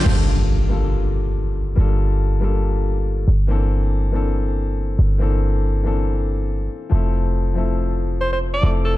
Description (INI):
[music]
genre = future bass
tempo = 140 BPM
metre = 4/4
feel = swing 56% on 16ths, half-time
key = unclear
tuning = A4 = 440 Hz
[part]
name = warm grand piano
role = accompaniment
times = 0.0-9.0 s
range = E3 to A4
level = -25 LUFS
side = left 5 dB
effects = digital delay
[part]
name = warm 808-style bass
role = bass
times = 0.1-9.0 s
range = F1 to G1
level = -18 LUFS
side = equal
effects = none
[part]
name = impact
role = sound effects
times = 0.1-1.8 s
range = none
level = -27 LUFS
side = equal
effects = none
[part]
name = bright alto saxophone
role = melody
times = 8.2-8.9 s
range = A4 to D5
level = -24 LUFS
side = right 2 dB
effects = digital delay
[sound]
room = little or no reverb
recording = dark, warm production, nothing above 10.8 kHz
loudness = -17 LUFS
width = side -16 dB against mid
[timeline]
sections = 0.1-9.0 A section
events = impact 0.1-1.8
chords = 0.1 Gm9; 3.3 C13/G; 6.9 Fmaj7